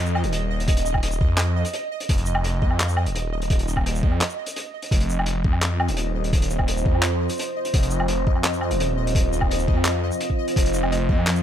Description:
half-time drum and bass; 170 BPM; 4/4; half-time; A4 = 440 Hz
phased detuned saw bass; bass; 0.0-11.4 s; Eb1 to F2; -23 LUFS; equal; phaser
pulsing gated texture; texture; 0.0-11.4 s; Eb5; -31 LUFS; equal; chorus, built-in reverb
crunchy breakbeat drum kit; drums; 0.1-11.4 s; handclaps, hi-hat, shaker, woodblock; -27 LUFS; equal
electronic kick drum; drums; 0.7-11.2 s; -21 LUFS; equal
deep dark ambient pad; sustained chords; 5.9-11.4 s; C4 to C5; -27 LUFS; right 2 dB; chorus, built-in reverb, sidechain pumping
studio ambience; -20 LUFS; side -10 dB against mid
0.0-11.4 A section
break 4.2-4.9
0.0 F5

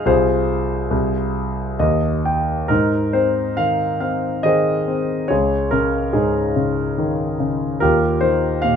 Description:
classical, lyrical solo piano; 70 BPM; 3/4; uneven beats, rubato; Ab major; A4 = 440 Hz
warm concert grand piano; solo; 0.0-8.8 s; C2 to G5; -17 LUFS; equal
light reverb; close, detailed microphones; -17 LUFS; side -7 dB against mid
0.0-2.7 A section; 2.7-8.8 B section
grand piano fill 1.4-2.7
0.1 Fm/C; 1.8 N.C.; 2.7 Ab; 5.3 Dbsus2; 7.8 Ebadd9

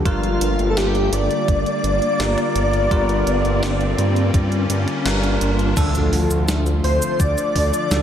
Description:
synthwave; 84 BPM; 4/4; straight; A4 = 439 Hz
brassy analog pad; sustained chords; 0.0-8.0 s; D3 to F4; -26 LUFS; left 2 dB; chorus
dark detuned saw bass; bass; 0.0-8.0 s; G1 to G2; -21 LUFS; equal
riser and impact; sound effects; 0.0-8.0 s; -27 LUFS; equal
wide unison lead; melody; 0.1-8.0 s; F4 to D5; -22 LUFS; equal; diffuse ambient delay
airy dreamy lead; second line; 0.1-8.0 s; F4 to D5; -30 LUFS; equal; chorus, diffuse ambient delay
bell-like tine electric piano; stabs; 0.1-8.0 s; F3 to Bb4; -27 LUFS; equal; phaser, low-pass filter, diffuse ambient delay
clean 12-bit digital drum machine; drums; 0.1-8.0 s; crash cymbal, hi-hat, shaker, snare drum, toms; -28 LUFS; right 1 dB; high-pass filter on hats, high-pass filter on snare, high-pass filter on toms, high-pass filter on cymbals, high-pass filter on perc
electronic kick drum; drums; 0.1-7.7 s; -19 LUFS; equal
wet plate reverb, RT60 2.2 s; dreamy mix soaked in reverb; -16 LUFS; side -9 dB against mid
0.0-5.8 A section; 5.8-8.0 B section
riser 0.0-5.8; filter sweep on analog synth pad 0.0-5.8; impact 5.8-8.0
0.1 Gm7; 5.8 Dm

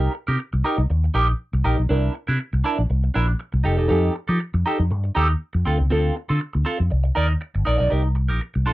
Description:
disco; 120 BPM; 4/4; straight; C dorian; A4 = 440 Hz
clean electric guitar; accompaniment; 0.0-8.7 s; C4 to D5; -23 LUFS; right 2 dB; wah
fingered electric bass with an envelope filter; bass; 0.0-8.7 s; E1 to F3; -20 LUFS; equal
little or no reverb; dry, close 1970s-style studio recording; -19 LUFS; side -17 dB against mid
0.0-7.9 A section
0.0 Cm7; 1.9 C9; 3.7 F9; 5.7 Dm7; 6.9 Cm9; 7.9 Cm7

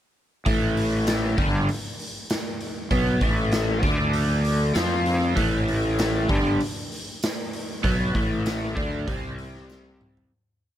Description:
psychedelic rock; 97 BPM; 4/4; straight; A minor; A4 = 440 Hz
overdriven electric guitar; riff; 0.5-10.3 s; G2 to F4; -24 LUFS; equal; rotary speaker
fuzz fingered electric bass; bass; 0.5-10.3 s; G1 to F2; -28 LUFS; equal; overdrive
raw garage drum kit; drums; 0.5-10.3 s; hi-hat, kick drum, snare drum, toms; -27 LUFS; equal
tambourine; percussion; 1.1-9.8 s; -41 LUFS; right 13 dB
studio reverb; -21 LUFS; side -11 dB against mid
0.5-10.3 groove
fade-out 7.8-10.3; drum fill 9.7-10.3
0.5 A5; 3.8 D5; 4.8 F5; 5.4 A5; 9.1 C5

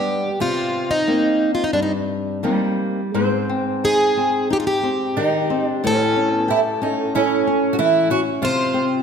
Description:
fado-style ballad; 90 BPM; 4/4; uneven beats, rubato; A4 = 440 Hz
picked plugged-in twelve-string acoustic guitar; melody; 0.0-9.0 s; D4 to C5; -20 LUFS; equal
fingerpicked twelve-string acoustic guitar; second line; 0.0-9.0 s; G3 to F#4; -22 LUFS; right 5 dB
flamenco guitar; accompaniment; 0.0-9.0 s; G2 to G4; -22 LUFS; left 4 dB
moderate concert hall reverb, RT60 1.8 s; -17 LUFS; side -6 dB against mid
0.0-3.1 A section; 3.1-9.0 B section
0.4 Cm7; 3.1 Abmaj7; 5.8 A7; 8.4 Bbsus2/C (rootless)

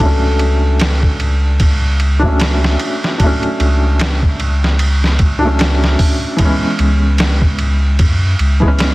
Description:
trip hop; 75 BPM; 4/4; swing 57% on 16ths; A4 = 440 Hz
felt-muted upright piano; accompaniment; 0.0-8.9 s; E3 to D4; -19 LUFS; equal; tremolo, low-pass filter, tape echo
concert harp; arpeggios; 0.0-2.5 s; B3 to A4; -25 LUFS; left 6 dB; tape echo
soft dub sub bass; bass; 0.0-8.9 s; C#2 to F#2; -14 LUFS; equal
trip hop sampler-style drum kit; drums; 0.0-8.9 s; hi-hat, kick drum, ride cymbal, snare drum; -16 LUFS; equal; studio reverb
little or no reverb; dense, heavily limited modern master, vinyl crackle; -11 LUFS; side -20 dB against mid
0.0-8.9 A section
filter sweep on felt piano 0.0-8.9
0.0 Dmaj7/C#; 6.4 C#m7

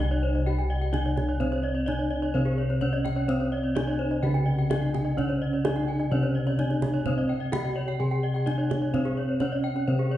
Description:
Balinese gamelan; 127 BPM; 4/4; straight; C pelog; A4 = 440 Hz
gamelan-type bronze metallophone; melody; 0.0-10.2 s; C4 to Ab4-40c; -30 LUFS; equal
gamelan-type bronze metallophone; arpeggios; 0.0-10.2 s; C5 to Ab5-40c; -33 LUFS; left 2 dB
gamelan-type bossed gongs; bass; 0.0-10.2 s; C2 to G4-45c; -26 LUFS; equal
kendang; percussion; 0.0-10.1 s; -34 LUFS; right 2 dB
gamelan-type bronze metallophone; arpeggios; 0.1-10.1 s; Ab4-40c to Ab5-40c; -36 LUFS; right 4 dB
wet recital hall reverb, RT60 1.4 s; heard from further back in the room, nothing above 10.8 kHz; -24 LUFS; side -13 dB against mid
0.0-10.2 A section

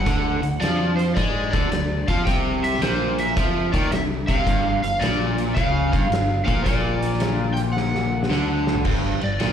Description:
blues rock power trio and southern rock; 109 BPM; 4/4; swing 66% on 8ths; A4 = 438 Hz
overdriven slide guitar; melody; 0.0-9.5 s; C5 to G5; -26 LUFS; equal; slapback echo
crunchy overdriven guitar; riff; 0.0-9.5 s; G2 to Ab3; -23 LUFS; equal
growling fingered electric bass; bass; 0.0-9.5 s; G1 to Ab2; -27 LUFS; left 1 dB; overdrive
oversized low-tuned drum kit; drums; 0.1-9.5 s; crash cymbal, hi-hat, kick drum, ride cymbal, snare drum, toms; -24 LUFS; equal
small room ambience; live gig heard through the venue's PA, club reverb; -19 LUFS; side -8 dB against mid
0.0-8.9 A section
drum fill 7.8-8.9
0.1 D; 2.3 C7; 4.5 G5; 7.8 D; 8.9 G5

